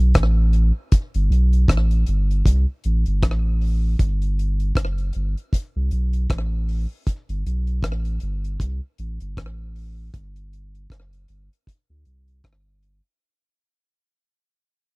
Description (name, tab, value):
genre	roots reggae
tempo	78 BPM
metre	4/4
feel	swing 57% on 16ths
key	unclear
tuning	A4 = 440 Hz
part	warm sub bass	bass	0.0-13.0 s	F#1 to D2	-20 LUFS	equal	none
part	deep reggae drum kit	drums	0.1-13.0 s	hi-hat, kick drum, rim click	-18 LUFS	equal	slapback echo
room	little or no reverb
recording	dry, close 1970s-style studio recording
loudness	-19 LUFS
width	side -30 dB against mid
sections	0.9-13.2 A section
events	fade-out 0.9-13.2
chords	none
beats	0.15 | 0.92 1.69 2.45 3.22 | 3.99 4.75 5.52 6.29 | 7.06 7.83 8.60 9.36 | 10.13 10.90 11.67 12.44